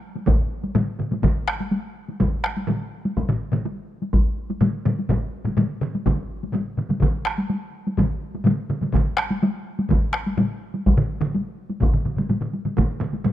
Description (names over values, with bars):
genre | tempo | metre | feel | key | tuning
japanese traditional, taiko drum ensemble | 125 BPM | 4/4 | straight | none | none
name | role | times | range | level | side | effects
taiko ensemble | percussion | 0.2-13.3 s | none | -25 LUFS | left 1 dB | none
taiko ensemble | percussion | 0.3-13.3 s | none | -26 LUFS | left 3 dB | none
taiko ensemble | percussion | 0.3-13.3 s | none | -27 LUFS | right 5 dB | none
taiko ensemble | percussion | 0.3-12.9 s | none | -23 LUFS | equal | none
room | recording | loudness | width
light reverb, studio ambience | rough home demo mix | -21 LUFS | side -12 dB against mid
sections
0.0-13.3 A section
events
none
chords
none